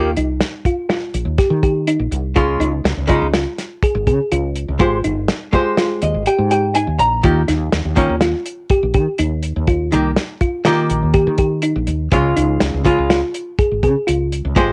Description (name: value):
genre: progressive instrumental, band music in an uneven meter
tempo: 123 BPM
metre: 5/4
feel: straight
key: unclear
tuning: A4 = 440 Hz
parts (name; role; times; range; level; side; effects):
- archtop guitar, miked and amplified; accompaniment; 0.0-14.7 s; Db3 to Bb5; -20 LUFS; equal; cassette tape
- thumb-piano-like synth pluck; arpeggios; 0.0-14.7 s; Eb4 to Ab4; -22 LUFS; equal; chorus, cassette tape
- woody fretless electric bass; bass; 0.0-14.7 s; G1 to Eb3; -22 LUFS; equal; lush chorus
- damped 70s drum kit; drums; 0.2-14.7 s; hi-hat, kick drum, snare drum; -21 LUFS; equal; cassette tape
room: light reverb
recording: home recording on cassette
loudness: -17 LUFS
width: mono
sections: 0.0-14.7 A section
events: hollow-body jazz guitar fill 5.8-7.2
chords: 0.0 Eb; 2.4 Db; 4.8 Abmaj7; 7.2 Eb; 12.1 Db